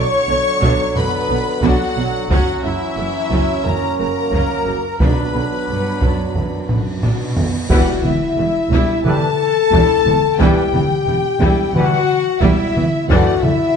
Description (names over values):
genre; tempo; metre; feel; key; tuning
cinematic, epic orchestral film score; 89 BPM; 4/4; straight; unclear; A4 = 440 Hz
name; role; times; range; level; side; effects
warm symphonic violin section; melody; 0.0-13.8 s; E5 to C#6; -26 LUFS; left 4 dB; none
warm symphonic violin section; second line; 0.0-13.8 s; E4 to A5; -26 LUFS; left 3 dB; none
rich studio viola section; accompaniment; 0.0-13.5 s; C#3 to E4; -24 LUFS; right 1 dB; none
clear trombone section; sustained chords; 0.0-13.3 s; D3 to D4; -26 LUFS; right 4 dB; none
warm French horn section; sustained chords; 0.0-13.8 s; E3 to C#5; -20 LUFS; left 6 dB; none
dark trumpet section; stabs; 0.0-13.3 s; E4 to D5; -25 LUFS; right 1 dB; none
rich studio double bass section; bass; 0.0-13.5 s; E1 to B1; -24 LUFS; right 3 dB; none
warm symphonic cello section; bass; 0.0-13.5 s; E2 to B2; -23 LUFS; right 4 dB; none
solo taiko drums; drums; 0.6-13.8 s; none; -20 LUFS; equal; none
timpani; percussion; 5.0-6.0 s; B2; -25 LUFS; equal; none
cymbal swell and impact; sound effects; 6.9-10.4 s; none; -30 LUFS; equal; none
room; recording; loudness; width
moderate recital hall reverb, RT60 1.7 s; nothing above 10.6 kHz; -14 LUFS; side -6 dB against mid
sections
0.0-7.7 A section; 7.7-13.8 B section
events
drum fill 6.7-7.7; cymbal swell 6.9-7.7; impact 7.7-10.4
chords
0.0 Bm; 2.3 F#; 5.0 Bm; 7.7 Em; 13.1 Dadd9